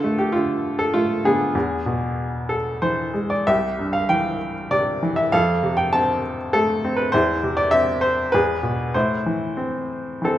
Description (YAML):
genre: classical, lyrical solo piano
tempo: 90-102 BPM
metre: 3/4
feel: rubato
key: unclear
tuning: A4 = 435 Hz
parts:
  - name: clear upright piano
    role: solo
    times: 0.0-10.4 s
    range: C2 to A5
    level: -19 LUFS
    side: equal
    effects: none
room: moderate recital hall reverb, RT60 1.6 s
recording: minimal, uncompressed stereo recording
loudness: -19 LUFS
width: side -12 dB against mid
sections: 0.0-10.4 A section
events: none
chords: 0.0 Dm; 1.6 E; 3.5 C; 5.3 F; 7.1 Cadd9/E; 8.3 E; 8.9 Am